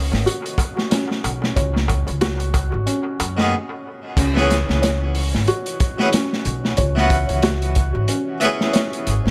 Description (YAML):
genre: trip hop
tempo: 92 BPM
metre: 4/4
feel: swing 57% on 16ths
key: C# dorian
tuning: A4 = 440 Hz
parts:
  - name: harpsichord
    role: accompaniment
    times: 0.0-9.3 s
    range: D#3 to G#4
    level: -25 LUFS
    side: equal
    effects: tremolo, tape echo
  - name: felt-muted upright piano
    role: arpeggios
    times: 0.0-9.3 s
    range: C#4 to C#5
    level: -28 LUFS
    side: equal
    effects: dub echo
  - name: upright bass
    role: bass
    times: 0.0-9.3 s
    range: G#1 to F#2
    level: -24 LUFS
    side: equal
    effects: none
  - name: crunchy breakbeat drum kit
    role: drums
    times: 0.1-9.3 s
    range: crash cymbal, hi-hat, kick drum, snare drum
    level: -24 LUFS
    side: equal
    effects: none
  - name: darbuka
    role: percussion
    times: 0.1-3.5 s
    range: none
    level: -34 LUFS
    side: equal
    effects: dub echo
room: small room reverb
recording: echo-heavy mix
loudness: -20 LUFS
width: mono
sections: 0.0-4.2 A section; 4.2-9.3 B section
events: stop 3.5-4.2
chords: 0.0 G#madd9; 4.2 C#m7